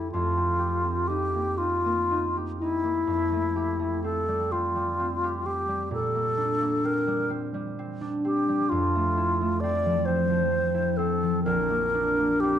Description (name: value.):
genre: classical, impressionist duo for alto flute and harp.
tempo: 39-45 BPM (dotted quarters).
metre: 6/8.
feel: rubato.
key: F major.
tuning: A4 = 440 Hz.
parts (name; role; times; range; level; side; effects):
bright alto flute; melody; 0.0-12.6 s; E4 to D5; -26 LUFS; left 1 dB; none.
concert harp; accompaniment; 0.0-12.6 s; Bb1 to A4; -27 LUFS; equal; none.
room: moderate scoring stage reverb, RT60 1.7 s.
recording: dark, warm production.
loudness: -24 LUFS.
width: side -10 dB against mid.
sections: 0.0-12.6 A section.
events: none.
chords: 0.1 Eb69/F; 3.1 Fmaj9; 5.9 Bb69; 8.7 Fmaj7; 11.4 Bbadd9.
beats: | 0.12 1.59 | 3.07 4.53 | 5.92 7.32 | 8.70 10.06 | 11.45.